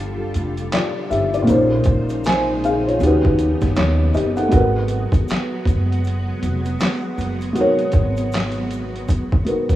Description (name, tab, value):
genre	lo-fi hip hop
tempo	79 BPM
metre	4/4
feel	swing 60% on 16ths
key	G# dorian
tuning	A4 = 441 Hz
part	felt-muted upright piano	accompaniment	0.0-9.8 s	A#2 to G#5	-19 LUFS	left 1 dB	cassette tape
part	soft string machine	sustained chords	0.0-9.8 s	C#3 to B#4	-26 LUFS	equal	ensemble chorus
part	upright bass	bass	0.0-9.8 s	F1 to F#2	-22 LUFS	equal	none
part	boom bap sampler-style drum kit	drums	0.3-9.8 s	handclaps, hi-hat, kick drum, snare drum	-21 LUFS	equal	overdrive
part	tube shaker	percussion	0.4-9.8 s	none	-51 LUFS	right 8 dB	none
room	moderate plate reverb, RT60 3.8 s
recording	rough home demo mix, cassette tape, small room ambience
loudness	-16 LUFS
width	side -14 dB against mid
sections	0.0-9.8 A section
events	none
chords	0.0 F69; 1.5 A#m11; 3.0 D#7alt; 4.5 G#m9